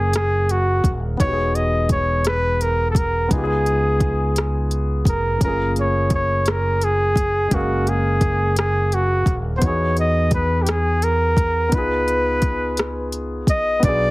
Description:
slow six-eight R&B; 57 BPM (dotted quarters); 6/8; straight; F# major; A4 = 439 Hz
warm flugelhorn; melody; 0.0-14.1 s; F#4 to D#5; -21 LUFS; equal; slapback echo, plate reverb
warm grand piano; accompaniment; 0.0-14.1 s; G#3 to E#5; -26 LUFS; left 1 dB; plate reverb
mellow fretless electric bass; bass; 0.0-14.1 s; D#1 to E2; -22 LUFS; equal
smooth R&B drum kit; drums; 0.1-14.0 s; hi-hat, kick drum, rim click; -20 LUFS; equal; overdrive
light reverb; heavily compressed radio sound; -17 LUFS; side -21 dB against mid
0.0-13.8 A section
0.0 F#maj9; 1.2 Emaj9; 3.3 C#9; 5.4 F#maj9; 9.6 Emaj9; 11.7 C#9

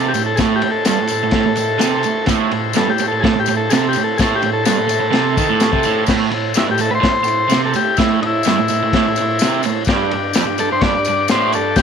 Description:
garage rock duo or trio; 127 BPM; 4/4; straight; A minor; A4 = 439 Hz
overdriven combo organ; melody; 0.0-11.8 s; D#4 to D5; -18 LUFS; left 3 dB
combo organ; sustained chords; 0.0-11.8 s; D4 to D5; -24 LUFS; left 14 dB
raw garage guitar; riff; 0.0-11.8 s; F2 to D#3; -18 LUFS; right 9 dB; overdrive
vintage drum kit; drums; 0.1-11.8 s; crash cymbal, kick drum, ride cymbal, snare drum; -20 LUFS; left 2 dB
tambourine; percussion; 0.1-11.8 s; -29 LUFS; left 18 dB
light reverb, small room reverb; 1960s-style stereo with parts hard left and right; -14 LUFS; side -7 dB against mid
0.0-11.8 A section
transistor combo organ solo 0.0-11.8
0.0 Am; 9.9 G5

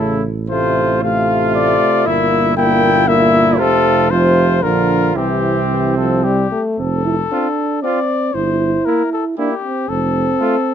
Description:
classical, brass quintet; 116 BPM; 3/4; rubato; F major; A4 = 439 Hz
clear cornet; melody; 0.0-10.7 s; G4 to G5; -18 LUFS; left 7 dB
clear trumpet; second line; 0.0-10.6 s; C4 to F4; -20 LUFS; right 9 dB
mellow euphonium; accompaniment; 0.0-10.7 s; Bb2 to E4; -20 LUFS; right 4 dB
warm French horn; accompaniment; 0.0-10.6 s; E3 to C4; -20 LUFS; left 3 dB
mellow tuba; bass; 0.0-10.3 s; F1 to C2; -20 LUFS; right 4 dB
light reverb; close, detailed microphones; -13 LUFS; side -8 dB against mid
0.0-6.8 A section; 6.8-10.7 B section
0.0 A; 0.5 F/A; 2.1 Edim/G; 3.6 F; 4.6 Bb; 5.2 C; 6.8 F; 8.3 C7/G; 9.9 F

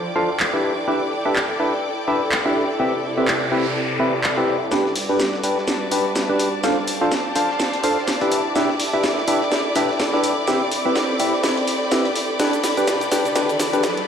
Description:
piano house; 125 BPM; 4/4; swing 57% on 16ths; G major; A4 = 440 Hz
rich studio violin section; sustained chords; 0.0-14.1 s; D5 to D6; -28 LUFS; equal; low-pass filter
rich symphonic string section; texture; 0.0-14.1 s; C3 to B5; -25 LUFS; left 1 dB
breakbeat sampler-style drum kit; drums; 0.1-14.0 s; hi-hat, shaker, snare drum; -34 LUFS; equal
percussive organ stab; riff; 0.2-13.8 s; C4 to F5; -21 LUFS; equal; chorus, ping-pong delay
house drum kit; drums; 0.4-14.1 s; handclaps, hi-hat, shaker, snare drum; -24 LUFS; equal; high-pass filter on hats, high-pass filter on perc, high-pass filter on snare, high-pass filter on room
noise sweep and riser; sound effects; 3.1-4.7, 12.9-14.1 s; -30 LUFS; equal
wet lush hall reverb, RT60 1.8 s, digital ambience; played on a big sound system in a bare room, large studio reverb, high-pass filter; -18 LUFS; side -8 dB against mid
0.0-4.7 A section; 4.7-14.1 B section
filter sweep on synth stab 0.0-4.7; noise sweep 3.1-4.7; build-up 4.7-14.1; drum fill 4.7-14.1; riser 12.9-14.1
0.0 F6; 0.6 Em7; 2.8 Cmaj7; 4.7 G; 6.6 F6; 8.3 Em7; 10.5 Cmaj7; 12.4 G

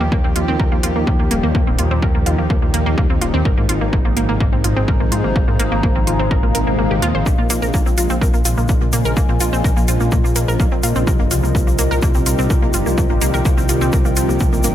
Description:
melodic techno; 126 BPM; 4/4; straight; Bb dorian; A4 = 440 Hz
evolving wavetable pad; sustained chords; 0.0-14.7 s; Bb2 to Ab4; -25 LUFS; left 1 dB; phaser, built-in reverb, sidechain pumping
wide unison pluck; arpeggios; 0.0-14.7 s; Bb3 to C5; -23 LUFS; right 1 dB; cassette tape, sidechain pumping, analog delay
dark detuned saw bass; bass; 0.0-14.7 s; Eb1 to Bb2; -20 LUFS; equal; sidechain pumping
bowed-like drone; drone; 0.0-14.7 s; Bb2 to F3; -28 LUFS; equal
warbly tape-like pad; texture; 0.0-14.7 s; F4 to Bb5; -26 LUFS; equal; chorus, built-in reverb, sidechain pumping
electronic kick drum; drums; 0.1-14.5 s; -17 LUFS; equal
electronic hi-hat; drums; 0.4-14.7 s; -23 LUFS; right 2 dB
swell; sound effects; 6.5-7.3 s; -27 LUFS; left 4 dB
tube shaker; percussion; 7.3-14.7 s; -28 LUFS; left 4 dB
light reverb; echo-heavy mix; -14 LUFS; side -11 dB against mid
0.0-14.7 A section
swell 6.5-7.3; kick drops out 6.8-7.3
0.0 Eb; 3.5 Ab; 7.3 Bbm7; 11.1 Cm

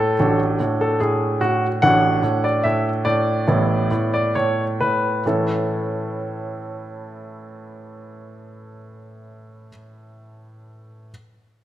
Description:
classical-period piano sonatina; 64-75 BPM; 2/4; rubato; A major; A4 = 440 Hz
clear baby grand piano; solo; 0.0-11.1 s; A1 to F#5; -18 LUFS; equal
wet recital hall reverb, RT60 1.7 s; -18 LUFS; side -13 dB against mid
0.0-5.3 A section; 5.3-8.9 B section
slowing down 1.0-5.3
0.2 D/A; 3.5 E5/A; 5.3 A

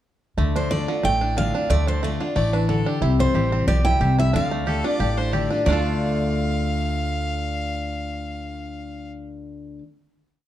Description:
bluegrass; 182 BPM; 4/4; swing 53% on 8ths; D minor; A4 = 440 Hz
picked steel-string acoustic guitar; accompaniment; 0.4-9.8 s; A2 to F4; -26 LUFS; left 3 dB
bluegrass banjo; arpeggios; 0.4-9.8 s; D3 to A4; -28 LUFS; right 6 dB
upright bass; bass; 0.4-9.8 s; A1 to D2; -24 LUFS; equal
picked steel-string acoustic guitar; melody; 0.6-9.8 s; C5 to G5; -25 LUFS; right 1 dB
clear fiddle; second line; 2.4-9.1 s; G4 to F5; -30 LUFS; left 2 dB
light reverb; dark, warm production; -20 LUFS; side -12 dB against mid
0.4-5.7 A section; 5.7-8.3 final chord
0.4 Dm; 3.0 C; 4.3 Dm

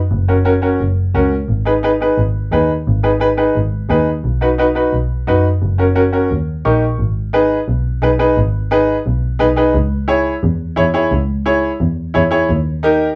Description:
latin, cumbia; 174 BPM; 4/4; straight; G# minor, G# harmonic minor from 7.0 s; A4 = 440 Hz
dark double bass; bass; 0.0-13.0 s; F#1 to F#2; -19 LUFS; equal
clear upright piano; accompaniment; 0.3-13.1 s; C#4 to C#6; -17 LUFS; equal
wet small room reverb, RT60 0.5 s; heard from further back in the room; -16 LUFS; mono
0.0-7.0 A section; 7.0-13.2 B section
upright piano fill 6.5-7.0
0.1 F#; 1.5 G#m; 4.2 B; 5.6 F#; 6.3 D#7; 7.0 G#m; 9.7 C#m; 12.5 D#

